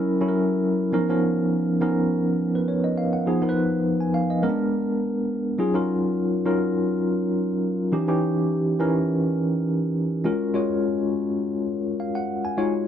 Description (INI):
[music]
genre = pop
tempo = 103 BPM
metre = 4/4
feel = swing 54% on 16ths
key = unclear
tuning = A4 = 440 Hz
[part]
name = tine electric piano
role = solo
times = 0.0-12.9 s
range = E3 to Ab5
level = -21 LUFS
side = equal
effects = medium tremolo, lush chorus
[sound]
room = little or no reverb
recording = dry, close 1970s-style studio recording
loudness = -21 LUFS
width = side -9 dB against mid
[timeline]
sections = 0.9-10.3 A section; 10.3-12.9 B section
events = none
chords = 0.0 F#7; 0.9 Bmaj9#11; 3.3 Fm7b5; 4.4 A#7b9; 5.6 D#m9; 7.9 D#7b9; 10.3 F#maj9